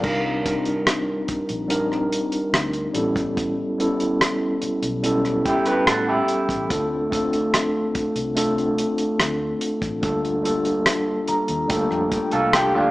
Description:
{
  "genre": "lush 1970s-style soul",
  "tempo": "72 BPM",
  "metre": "4/4",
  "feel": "straight",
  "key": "unclear",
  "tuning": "A4 = 440 Hz",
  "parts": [
    { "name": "mellow tine electric piano", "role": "accompaniment", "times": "0.0-12.9 s", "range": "G3 to Bb5", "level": "-22 LUFS", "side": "equal", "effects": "medium stereo tremolo" },
    { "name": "vintage muted fingered electric bass", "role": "bass", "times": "0.0-12.9 s", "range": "A1 to A2", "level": "-34 LUFS", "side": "equal", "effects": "none" },
    { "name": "warm soul drum kit", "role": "drums", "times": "0.0-12.7 s", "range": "crash cymbal, hi-hat, kick drum, rim click", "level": "-24 LUFS", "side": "equal", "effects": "none" },
    { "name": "electric guitar through a small old amp", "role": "riff", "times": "5.5-6.7, 12.3-12.9 s", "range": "D4 to B4", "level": "-22 LUFS", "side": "right 1 dB", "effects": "spring reverb" }
  ],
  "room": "moderate large studio reverb, RT60 1.2 s",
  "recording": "band playing live in one room, small speaker sound",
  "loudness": "-19 LUFS",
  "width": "side -18 dB against mid",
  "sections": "0.0-12.9 A section",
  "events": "tine electric piano fill 10.9-12.9",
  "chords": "0.0 Cm9; 3.0 A7; 6.7 Dm7; 10.0 Gm7/D"
}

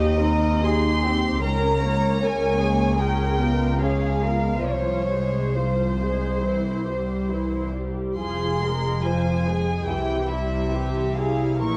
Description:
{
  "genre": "classical, slow romantic movement for string orchestra",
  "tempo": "64-79 BPM",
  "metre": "4/4",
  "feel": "rubato",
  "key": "unclear",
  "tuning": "A4 = 435 Hz",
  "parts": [
    { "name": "warm chamber violin section", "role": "melody", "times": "0.0-11.8 s", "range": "C5 to Db6", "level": "-31 LUFS", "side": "equal", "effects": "none" },
    { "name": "warm symphonic violin section", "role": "second line", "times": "0.0-11.8 s", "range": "E4 to Db5", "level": "-32 LUFS", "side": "equal", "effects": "none" },
    { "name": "dark symphonic viola section", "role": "accompaniment", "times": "0.0-11.8 s", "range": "E3 to Db5", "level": "-29 LUFS", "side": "equal", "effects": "none" },
    { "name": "rich symphonic cello section", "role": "bass", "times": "0.0-11.8 s", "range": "C2 to C3", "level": "-29 LUFS", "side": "equal", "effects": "none" },
    { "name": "warm studio double bass section", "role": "bass", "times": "0.0-11.8 s", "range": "F1 to Eb2", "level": "-29 LUFS", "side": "equal", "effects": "none" }
  ],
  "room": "moderate scoring stage reverb, RT60 1.9 s",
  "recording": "dark, warm production",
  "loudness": "-23 LUFS",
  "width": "mono",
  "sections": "0.0-11.8 A section",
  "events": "none",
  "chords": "0.0 Cm/Eb; 1.4 Bbm/Db; 3.0 Db7; 4.7 Fm/C; 6.4 C; 8.2 Fm; 9.9 C"
}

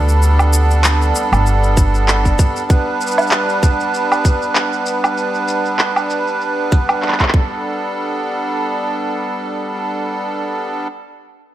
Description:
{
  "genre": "folktronica",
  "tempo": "97 BPM",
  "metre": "4/4",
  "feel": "swing 56% on 16ths",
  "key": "G major",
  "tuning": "A4 = 440 Hz",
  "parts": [
    { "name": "accordion", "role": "sustained chords", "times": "0.0-10.9 s", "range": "G3 to B4", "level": "-18 LUFS", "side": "right 2 dB", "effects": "light tremolo tuning" },
    { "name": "Celtic harp", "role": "arpeggios", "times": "0.0-0.6 s", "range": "none", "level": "barely audible", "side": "none", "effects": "none" },
    { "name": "upright bass", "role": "bass", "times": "0.0-2.3 s", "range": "G1 to D2", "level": "-14 LUFS", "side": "equal", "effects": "none" },
    { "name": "electronic shaker, woodblock and handclaps", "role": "drums", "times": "0.1-7.3 s", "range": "none", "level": "-18 LUFS", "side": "equal", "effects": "overdrive, low-pass filter on perc, low-pass filter on hats, low-pass filter on snare" },
    { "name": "electronic kick drum", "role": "drums", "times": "1.8-7.5 s", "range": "none", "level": "-13 LUFS", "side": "equal", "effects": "none" }
  ],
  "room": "light reverb, studio reverb",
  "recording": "none",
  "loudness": "-14 LUFS",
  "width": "side -13 dB against mid",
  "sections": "0.0-7.6 A section; 7.6-10.1 B section",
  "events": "none",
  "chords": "0.0 Gadd9"
}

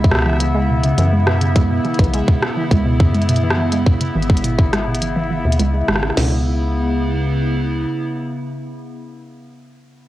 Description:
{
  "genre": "IDM",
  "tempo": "104 BPM",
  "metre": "4/4",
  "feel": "straight",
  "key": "C# minor",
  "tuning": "A4 = 437 Hz",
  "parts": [
    { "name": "warbly tape-like pad", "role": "sustained chords", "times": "0.0-9.2 s", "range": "C#3 to E4", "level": "-22 LUFS", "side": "equal", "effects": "chorus, built-in reverb, phaser, sidechain pumping, cassette tape" },
    { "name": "warbly dusty pluck", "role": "arpeggios", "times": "0.0-6.4 s", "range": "B2 to C#4", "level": "-21 LUFS", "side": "right 1 dB", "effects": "chorus, phaser, cassette tape, tape echo" },
    { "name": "deep acid bass", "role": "bass", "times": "0.0-7.9 s", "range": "G#1 to F#2", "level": "-20 LUFS", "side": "equal", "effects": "tube saturation" },
    { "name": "glitchy drum kit", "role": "drums", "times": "0.0-6.3 s", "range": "crash cymbal, kick drum, snare drum", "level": "-16 LUFS", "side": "equal", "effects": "cassette tape" },
    { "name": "bubbling stepped-filter texture", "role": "texture", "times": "0.0-6.2 s", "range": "E4 to E5", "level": "-27 LUFS", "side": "left 1 dB", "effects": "chorus, built-in reverb, cassette tape" },
    { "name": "glitchy drum kit", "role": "drums", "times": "0.1-6.2 s", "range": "hi-hat, rim click", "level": "-22 LUFS", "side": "equal", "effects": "cassette tape" }
  ],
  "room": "light reverb",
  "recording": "home recording on cassette",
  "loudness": "-15 LUFS",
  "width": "side -15 dB against mid",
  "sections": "0.0-6.2 A section; 6.2-8.5 B section",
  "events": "filter sweep on synth pluck 0.0-6.2",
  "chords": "0.0 C#m7"
}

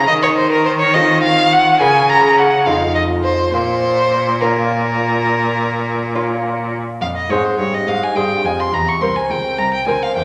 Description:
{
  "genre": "classical, baroque-style sonata movement with continuo",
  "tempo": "70 BPM (dotted quarters)",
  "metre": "12/8",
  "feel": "straight",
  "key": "Bb minor, F minor from 7.0 s",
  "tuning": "A4 = 441 Hz",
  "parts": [
    { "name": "rich violin", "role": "melody", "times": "0.0-10.2 s", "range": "Bb4 to Db6", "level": "-18 LUFS", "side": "equal", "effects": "none" },
    { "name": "lute", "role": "accompaniment", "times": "0.0-10.2 s", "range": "E2 to C5", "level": "-22 LUFS", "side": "equal", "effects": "none" },
    { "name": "rich cello", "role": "bass", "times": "0.0-10.2 s", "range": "C2 to Eb3", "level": "-22 LUFS", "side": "equal", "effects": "none" }
  ],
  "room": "wet recital hall reverb, RT60 1.7 s",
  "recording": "lossy compression artefacts",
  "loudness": "-16 LUFS",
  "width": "mono",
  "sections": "0.0-7.0 A section; 7.0-10.2 A section",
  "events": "none",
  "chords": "0.1 F7/Eb; 1.8 Bbm/Db; 2.7 F7; 3.5 Bbm; 7.0 Fm; 8.7 C7"
}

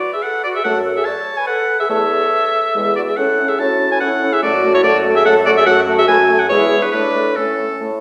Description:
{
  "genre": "quick classical-period movement for wind quintet",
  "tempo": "144 BPM",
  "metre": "3/4",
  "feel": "rubato",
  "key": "A major",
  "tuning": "A4 = 440 Hz",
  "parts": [
    { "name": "mellow concert flute", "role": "melody", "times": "0.0-7.8 s", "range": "C#4 to D5", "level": "-24 LUFS", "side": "equal", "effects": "none" },
    { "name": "bright oboe", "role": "second line", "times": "0.0-7.8 s", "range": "A4 to A5", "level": "-19 LUFS", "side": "equal", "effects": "none" },
    { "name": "mellow clarinet", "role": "accompaniment", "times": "0.0-8.0 s", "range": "E4 to C#5", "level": "-24 LUFS", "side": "equal", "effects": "none" },
    { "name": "clear French horn", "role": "accompaniment", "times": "0.7-7.9 s", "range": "G#3 to C#4", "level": "-25 LUFS", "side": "equal", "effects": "none" },
    { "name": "warm bassoon", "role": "bass", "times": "0.7-8.0 s", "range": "E2 to A2", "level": "-22 LUFS", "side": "equal", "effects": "none" }
  ],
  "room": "wet recital hall reverb, RT60 1.3 s",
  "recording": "recorded in a church or concert hall",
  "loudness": "-15 LUFS",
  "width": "mono",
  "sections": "0.0-8.0 A section",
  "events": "none",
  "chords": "0.0 F#m11; 1.9 A/E; 2.7 E; 3.2 A; 4.4 D(#11)/F#; 6.5 E; 6.9 A"
}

